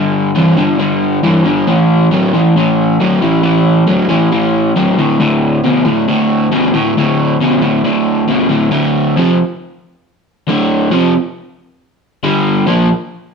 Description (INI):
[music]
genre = rock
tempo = 136 BPM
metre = 4/4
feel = straight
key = D minor from 8.7 s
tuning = A4 = 440 Hz
[part]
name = crunchy overdriven guitar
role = solo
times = 0.0-12.9 s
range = D2 to Bb3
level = -10 LUFS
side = equal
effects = none
[sound]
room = moderate stone room reverb, RT60 1.0 s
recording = band playing live in one room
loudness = -10 LUFS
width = side -5 dB against mid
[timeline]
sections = 0.0-8.7 A section; 8.7-13.3 B section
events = none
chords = 0.0 G5; 1.7 A5; 5.0 D5; 8.7 Dm; 12.2 G5